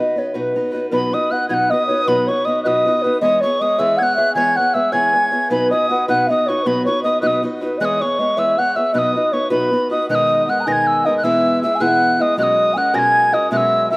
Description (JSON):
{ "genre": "celtic folk", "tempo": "105 BPM (dotted quarters)", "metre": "6/8", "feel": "straight", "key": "B major", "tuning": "A4 = 441 Hz", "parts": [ { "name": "mellow hollow baroque flute", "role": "melody", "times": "0.0-14.0 s", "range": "A#4 to A#5", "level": "-20 LUFS", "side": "equal", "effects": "none" }, { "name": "fingerpicked steel-string acoustic guitar", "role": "accompaniment", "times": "0.0-14.0 s", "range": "B2 to C#5", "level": "-25 LUFS", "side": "equal", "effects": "none" }, { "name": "mellow hollow tin whistle", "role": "second line", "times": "0.9-14.0 s", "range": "B5 to A#6", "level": "-23 LUFS", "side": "equal", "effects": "none" } ], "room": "moderate lush hall reverb, RT60 2.6 s", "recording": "rough home demo mix", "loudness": "-17 LUFS", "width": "mono", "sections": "0.9-10.1 A section; 10.1-14.0 B section", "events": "none", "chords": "0.0 B; 3.2 E6; 5.5 B; 7.8 E6; 8.9 B; 10.1 G#madd9/B; 11.2 E/B; 12.4 F#add9/B" }